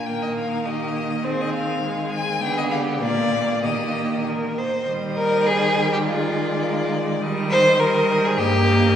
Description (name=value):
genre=quick classical-period movement for string quartet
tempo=102 BPM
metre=2/4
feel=straight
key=Eb major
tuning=A4 = 440 Hz
part: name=rich violin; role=melody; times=0.0-9.0 s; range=C5 to Ab5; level=-27 LUFS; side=left 4 dB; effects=none
part: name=rich violin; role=second line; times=0.1-9.0 s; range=F4 to C5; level=-22 LUFS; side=left 1 dB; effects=none
part: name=rich viola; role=accompaniment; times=0.1-9.0 s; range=G3 to C4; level=-25 LUFS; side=right 2 dB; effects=none
part: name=rich cello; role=bass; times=0.1-9.0 s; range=G2 to Eb3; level=-26 LUFS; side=right 2 dB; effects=none
room=wet cathedral reverb, RT60 5.2 s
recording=recorded in a church or concert hall, studio reverb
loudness=-19 LUFS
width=side -9 dB against mid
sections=0.0-4.9 A section; 4.9-9.0 B section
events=none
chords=0.1 Eb; 1.2 Fm7/Eb; 2.4 Ddim7(no3); 3.0 Bb; 3.6 Eb; 6.0 Ebsus24; 7.2 Eb; 8.4 Eb/G